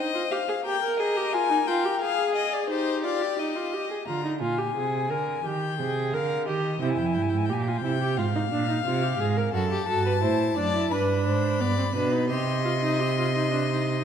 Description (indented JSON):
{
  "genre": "classical, baroque-style fugue for string quartet",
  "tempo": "88 BPM",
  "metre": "4/4",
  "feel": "straight",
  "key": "F minor",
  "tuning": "A4 = 440 Hz",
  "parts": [
    { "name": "warm violin", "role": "melody", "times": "0.0-14.0 s", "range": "C5 to C6", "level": "-29 LUFS", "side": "left 9 dB", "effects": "none" },
    { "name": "warm violin", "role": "second line", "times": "0.0-4.1, 9.5-14.0 s", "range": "F#4 to Eb5", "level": "-30 LUFS", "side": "left 3 dB", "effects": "none" },
    { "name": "warm viola", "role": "accompaniment", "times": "0.0-14.0 s", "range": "B3 to Bb4", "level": "-28 LUFS", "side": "right 2 dB", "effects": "none" },
    { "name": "warm cello", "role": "bass", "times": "4.1-14.0 s", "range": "F2 to Eb3", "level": "-27 LUFS", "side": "right 4 dB", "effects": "none" }
  ],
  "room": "wet scoring stage reverb, RT60 1.7 s",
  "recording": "none",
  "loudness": "-23 LUFS",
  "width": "side -8 dB against mid",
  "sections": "0.0-4.1 A section; 4.1-14.0 B section",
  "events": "none",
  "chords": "0.0 Cm/Eb; 1.3 Fm; 4.1 Bb7; 5.5 Eb; 6.8 C7; 8.2 Fm/Ab; 9.5 D7/F#; 10.9 G; 12.3 Cm",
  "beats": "0.65 | 1.33 2.02 2.70 3.39 | 4.08 4.77 5.45 6.13 | 6.82 7.50 8.18 8.86 | 9.54 10.22 10.91 11.60 | 12.30 13.00 13.70"
}